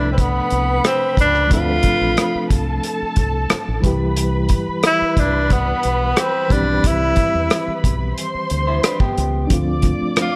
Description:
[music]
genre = lush 1970s-style soul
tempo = 90 BPM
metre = 4/4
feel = straight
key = C major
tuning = A4 = 440 Hz
[part]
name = breathy tenor saxophone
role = melody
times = 0.0-10.4 s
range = B3 to F4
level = -21 LUFS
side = equal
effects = analog delay
[part]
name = muted studio string section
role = second line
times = 0.0-10.4 s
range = A4 to D6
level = -28 LUFS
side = equal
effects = none
[part]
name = reed electric piano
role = accompaniment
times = 0.0-10.4 s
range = C3 to B4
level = -27 LUFS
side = equal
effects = overdrive, fast tremolo
[part]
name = deep dub fingered electric bass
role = bass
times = 0.0-10.0 s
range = A1 to E2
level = -24 LUFS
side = equal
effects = none
[part]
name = modern studio drum kit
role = drums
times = 0.2-10.3 s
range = hi-hat, kick drum, rim click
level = -22 LUFS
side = equal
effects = none
[part]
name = electric guitar through a small old amp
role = riff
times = 8.7-9.5 s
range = B3 to C5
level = -26 LUFS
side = equal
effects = none
[sound]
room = light reverb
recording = none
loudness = -18 LUFS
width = mono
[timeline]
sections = 0.0-10.4 A section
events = none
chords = 0.0 Dm7; 3.8 Cmaj7; 9.5 Dm7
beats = 0.17 0.84 | 1.51 2.18 2.84 3.51 | 4.18 4.84 5.51 6.18 | 6.84 7.51 8.17 8.84 | 9.51 10.17

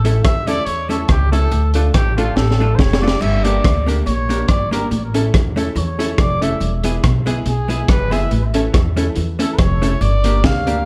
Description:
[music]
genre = ska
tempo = 141 BPM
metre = 4/4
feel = swing 55% on 8ths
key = unclear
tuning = A4 = 440 Hz
[part]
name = mellow trumpet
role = melody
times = 0.0-10.9 s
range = F4 to F5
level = -26 LUFS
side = equal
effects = tape echo
[part]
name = hollow-body jazz guitar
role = accompaniment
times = 0.0-10.8 s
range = G#3 to Bb4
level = -27 LUFS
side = equal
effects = none
[part]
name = warm upright piano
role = stabs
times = 0.0-10.8 s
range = G#3 to Bb4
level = -28 LUFS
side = equal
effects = none
[part]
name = upright bass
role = bass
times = 0.0-10.8 s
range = E1 to E2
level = -21 LUFS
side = equal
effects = none
[part]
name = crunchy breakbeat drum kit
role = drums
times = 0.0-10.8 s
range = crash cymbal, hi-hat, kick drum, rim click, snare drum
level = -21 LUFS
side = equal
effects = none
[part]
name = semi-hollow electric guitar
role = riff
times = 3.2-10.6 s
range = E2 to E3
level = -27 LUFS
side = equal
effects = none
[sound]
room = moderate club reverb, RT60 0.7 s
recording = none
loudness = -17 LUFS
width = mono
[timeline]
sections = 0.0-10.9 A section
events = trumpet solo 0.0-10.9; drum fill 2.4-3.2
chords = 0.0 A; 1.5 Dm; 3.2 Gm; 4.9 A; 6.6 E; 8.3 A; 10.0 Gm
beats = 0.24 0.67 1.09 | 1.52 1.94 2.37 2.79 | 3.22 3.64 4.07 4.49 | 4.92 5.34 5.76 6.19 | 6.61 7.04 7.46 7.89 | 8.31 8.74 9.16 9.59 | 10.01 10.44

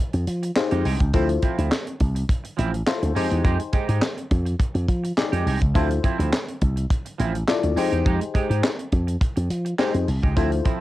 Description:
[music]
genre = early-eighties boogie funk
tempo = 104 BPM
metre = 4/4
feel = straight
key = unclear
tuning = A4 = 442 Hz
[part]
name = semi-hollow electric guitar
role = riff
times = 0.0-10.8 s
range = F3 to G4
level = -28 LUFS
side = right 7 dB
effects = analog chorus, cassette tape
[part]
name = slap bass with an envelope filter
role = bass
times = 0.1-10.6 s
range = A1 to F3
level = -22 LUFS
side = equal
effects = none
[part]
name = tight funk drum kit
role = drums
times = 0.1-10.8 s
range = handclaps, hi-hat, kick drum, snare drum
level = -23 LUFS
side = equal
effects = cassette tape
[part]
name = FM electric piano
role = accompaniment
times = 0.6-10.8 s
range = Eb4 to G5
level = -26 LUFS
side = left 6 dB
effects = chorus, phaser, cassette tape
[sound]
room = little or no reverb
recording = home recording on cassette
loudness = -20 LUFS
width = side -16 dB against mid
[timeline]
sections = 0.0-10.8 A section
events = FM electric piano fill 0.3-1.1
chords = 0.0 Fm9; 1.1 Dm9; 3.2 Fm9; 5.8 Dm9; 7.8 Fm9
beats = 0.56 | 1.14 1.72 2.29 2.87 | 3.45 4.03 4.60 5.18 | 5.76 6.33 6.91 7.49 | 8.06 8.64 9.22 9.79 | 10.37

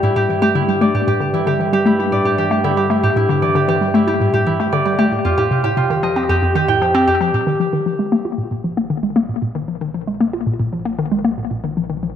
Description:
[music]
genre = ambient, sequencer-driven space music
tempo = 115 BPM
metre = 4/4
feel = straight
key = unclear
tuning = A4 = 439 Hz
[part]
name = Celtic harp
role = arpeggios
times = 0.0-9.4 s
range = E4 to G5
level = -17 LUFS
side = moving between left 3 dB and right 3 dB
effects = auto-pan, ping-pong delay
[part]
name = hollow square pluck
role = riff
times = 0.0-12.1 s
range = F2 to F4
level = -18 LUFS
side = left 1 dB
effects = chorus, ping-pong delay
[part]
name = analog drone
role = bass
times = 0.0-12.2 s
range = Bb1 to G2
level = -26 LUFS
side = right 1 dB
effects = chorus, tube saturation
[sound]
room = wet spring reverb, RT60 2.4 s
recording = echo-heavy mix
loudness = -15 LUFS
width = side -9 dB against mid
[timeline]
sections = 0.0-7.3 A section; 7.3-12.2 B section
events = filter sweep on synth arpeggio sound 0.0-7.3, 7.3-12.2; fade-in on synth drone 7.3-12.2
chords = 0.0 A5/G; 5.2 F7; 7.3 Bb5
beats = 0.03 0.55 | 1.07 1.60 2.12 2.64 | 3.16 3.68 4.21 4.73 | 5.25 5.77 6.29 6.81 | 7.34 7.86 8.38 8.90 | 9.42 9.95 10.47 10.99 | 11.51 12.03

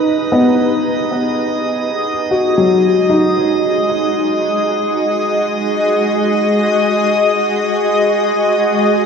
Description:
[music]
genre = ambient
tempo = free time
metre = none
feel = none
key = unclear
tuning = A4 = 440 Hz
[part]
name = shimmering ambient pad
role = sustained chords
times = 0.0-9.1 s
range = G#3 to D#5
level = -17 LUFS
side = left 1 dB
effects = chorus, built-in reverb
[part]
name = felt-muted upright piano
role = arpeggios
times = 0.0-9.1 s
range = F#3 to A#5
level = -16 LUFS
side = left 1 dB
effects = tape echo
[part]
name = drifting glass-harmonics texture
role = texture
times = 0.0-9.1 s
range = D#5 to D#6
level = -18 LUFS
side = right 1 dB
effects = chorus, built-in reverb
[sound]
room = wet plate reverb, RT60 3.4 s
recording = echo-heavy mix, cassette tape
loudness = -12 LUFS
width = side -6 dB against mid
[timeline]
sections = 0.0-9.1 A section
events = fade-in on ambient pad 0.0-9.1; fade-in on synth texture 0.0-9.1; fade-out on felt piano 0.0-9.1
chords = 0.0 G#m; 2.1 D#m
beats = free time

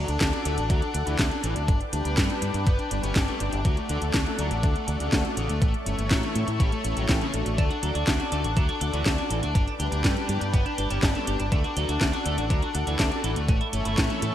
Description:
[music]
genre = italo disco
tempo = 122 BPM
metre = 4/4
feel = straight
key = D major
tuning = A4 = 440 Hz
[part]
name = smooth overdriven lead guitar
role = melody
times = 0.0-14.3 s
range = C#3 to C#5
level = -31 LUFS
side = left 2 dB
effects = ping-pong delay
[part]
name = lush unison pad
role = sustained chords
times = 0.0-14.3 s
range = A4 to D6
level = -34 LUFS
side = equal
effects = chorus
[part]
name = mellow synth brass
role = stabs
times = 0.0-14.3 s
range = E3 to F#5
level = -35 LUFS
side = left 2 dB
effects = chorus, phaser
[part]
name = fingered electric bass with an envelope filter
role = bass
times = 0.0-14.3 s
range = G1 to A2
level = -29 LUFS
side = equal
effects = none
[part]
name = house drum kit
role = drums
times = 0.1-14.3 s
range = handclaps, hi-hat, snare drum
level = -29 LUFS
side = equal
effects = overdrive, gated reverb
[part]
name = electronic kick drum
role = drums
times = 0.2-14.1 s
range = none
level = -25 LUFS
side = equal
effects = overdrive
[part]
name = twelve-string electric guitar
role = arpeggios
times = 7.6-14.3 s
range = B3 to A4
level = -35 LUFS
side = right 4 dB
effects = vibrato effect, ping-pong delay
[sound]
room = light reverb, digital ambience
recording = bright 1980s-style digital production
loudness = -23 LUFS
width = side -11 dB against mid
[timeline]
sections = 0.0-14.3 A section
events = none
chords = 0.0 D; 1.7 G; 3.6 D; 5.6 A; 7.6 D; 9.6 G; 11.5 D; 13.5 A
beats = 0.21 0.70 1.19 | 1.68 2.17 2.67 3.16 | 3.65 4.14 4.63 5.12 | 5.62 6.11 6.60 7.09 | 7.58 8.08 8.57 9.06 | 9.55 10.04 10.54 11.03 | 11.52 12.01 12.50 12.99 | 13.49 13.98

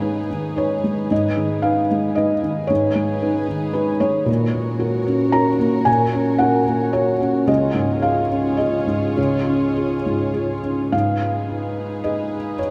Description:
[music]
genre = neoclassical piano and strings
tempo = 111 BPM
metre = 3/4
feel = rubato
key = G# dorian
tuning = A4 = 440 Hz
[part]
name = felt-muted upright piano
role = accompaniment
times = 0.0-12.7 s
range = C#2 to A#5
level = -20 LUFS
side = equal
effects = none
[part]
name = warm chamber string section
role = sustained chords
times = 0.0-12.7 s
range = D#4 to C#5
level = -30 LUFS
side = equal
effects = none
[sound]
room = wet cathedral reverb, RT60 6.4 s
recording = in a vast, echoing space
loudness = -20 LUFS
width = mono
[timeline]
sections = 0.0-10.9 A section; 10.9-12.7 B section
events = none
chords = 0.0 G#m; 4.3 F#/A#; 7.5 C#; 10.9 G#m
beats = 0.02 0.57 | 1.11 1.63 2.17 | 2.70 3.22 3.75 | 4.28 4.81 5.34 | 5.87 6.41 6.94 | 7.49 8.03 8.59 | 9.17 9.76 10.34 | 10.93 11.49 12.03 | 12.57

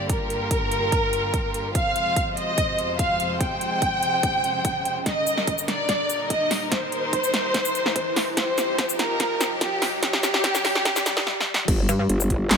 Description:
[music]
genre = heavy wobble dubstep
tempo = 145 BPM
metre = 4/4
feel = half-time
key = unclear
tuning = A4 = 440 Hz
[part]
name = warm symphonic violin section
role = melody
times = 0.0-11.6 s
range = G4 to G5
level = -24 LUFS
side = equal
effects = digital delay
[part]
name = rich chamber string section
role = sustained chords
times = 0.0-11.2 s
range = C2 to C5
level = -32 LUFS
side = left 2 dB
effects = sidechain pumping
[part]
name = riser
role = sound effects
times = 0.7-11.3 s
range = none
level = -32 LUFS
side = equal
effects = none
[part]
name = big-room dance drum kit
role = drums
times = 0.1-12.6 s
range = crash cymbal, handclaps, hi-hat, shaker, snare drum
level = -24 LUFS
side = equal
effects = none
[part]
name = electronic kick drum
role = drums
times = 0.1-12.4 s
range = none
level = -27 LUFS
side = equal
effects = none
[part]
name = growl bass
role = bass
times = 11.7-12.6 s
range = G1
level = -22 LUFS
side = equal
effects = chorus, overdrive
[part]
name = pulsing pluck wobble bass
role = bass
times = 11.9-12.1 s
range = G2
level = -20 LUFS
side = left 1 dB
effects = chorus, overdrive
[sound]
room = moderate plate reverb, RT60 1.4 s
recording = high-pass filter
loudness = -21 LUFS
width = side -6 dB against mid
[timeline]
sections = 0.0-11.7 A section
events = build-up 0.0-11.7; filter sweep 0.0-11.7; riser 0.7-11.3; drum fill 5.1-11.3, 11.3-11.7; break 11.3-11.7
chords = 0.0 Gm7; 1.8 Fm; 5.1 Eb; 8.4 Cm; 11.7 N.C.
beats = | 0.10 0.51 0.92 1.34 | 1.75 2.17 2.58 2.99 | 3.41 3.82 4.23 4.65 | 5.06 5.47 5.89 6.30 | 6.72 7.13 7.54 7.96 | 8.37 8.79 9.20 9.61 | 10.03 10.44 10.85 11.27 | 11.68 12.10 12.51

